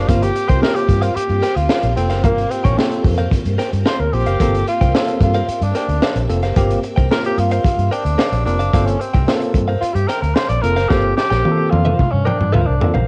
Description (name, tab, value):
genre	funk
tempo	111 BPM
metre	4/4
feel	straight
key	G dorian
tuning	A4 = 440 Hz
part	breathy tenor saxophone	melody	0.0-12.9 s	Bb3 to D5	-23 LUFS	equal	cassette tape
part	direct-recorded clean electric guitar	accompaniment	0.0-13.1 s	Bb4 to G5	-28 LUFS	equal	none
part	string machine, violins	sustained chords	0.0-13.1 s	Bb3 to E5	-32 LUFS	equal	ensemble chorus
part	vintage muted fingered electric bass	bass	0.0-13.1 s	F1 to G2	-21 LUFS	equal	none
part	barky tine electric piano	stabs	0.1-12.9 s	Bb3 to C5	-26 LUFS	equal	overdrive
part	crunchy breakbeat drum kit	drums	0.1-13.1 s	hi-hat, kick drum, snare drum, toms	-21 LUFS	equal	cassette tape
room	light reverb, small room ambience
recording	home recording on cassette, nothing above 11.0 kHz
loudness	-17 LUFS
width	mono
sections	0.0-13.1 A section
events	tenor saxophone solo 0.0-13.1; drum fill 10.9-13.1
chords	0.0 Gm11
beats	| 0.09 0.63 1.17 1.71 | 2.24 2.78 3.32 3.86 | 4.40 4.94 5.48 6.02 | 6.56 7.11 7.65 8.19 | 8.73 9.28 9.82 10.36 | 10.91 11.45 12.00 12.54